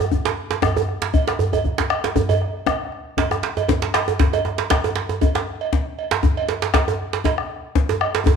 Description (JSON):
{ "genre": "west african traditional, West African drum ensemble", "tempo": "118 BPM", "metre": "4/4", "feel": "swing 54% on 16ths", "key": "none", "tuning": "none", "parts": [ { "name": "bombo", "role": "percussion", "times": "0.0-8.4 s", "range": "none", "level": "-23 LUFS", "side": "left 1 dB", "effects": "none" }, { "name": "djembe", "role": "percussion", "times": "0.0-8.4 s", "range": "none", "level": "-22 LUFS", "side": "right 6 dB", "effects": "none" }, { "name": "djembe", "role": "percussion", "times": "0.1-8.4 s", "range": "none", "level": "-24 LUFS", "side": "left 5 dB", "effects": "none" }, { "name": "cowbell", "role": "percussion", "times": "0.6-8.1 s", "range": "none", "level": "-28 LUFS", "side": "right 7 dB", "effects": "none" } ], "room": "moderate echo chamber reverb, RT60 1.4 s", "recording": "1960s-style stereo", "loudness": "-18 LUFS", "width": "side -6 dB against mid", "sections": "0.0-8.4 A section", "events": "drum fill 1.5-2.2", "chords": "none" }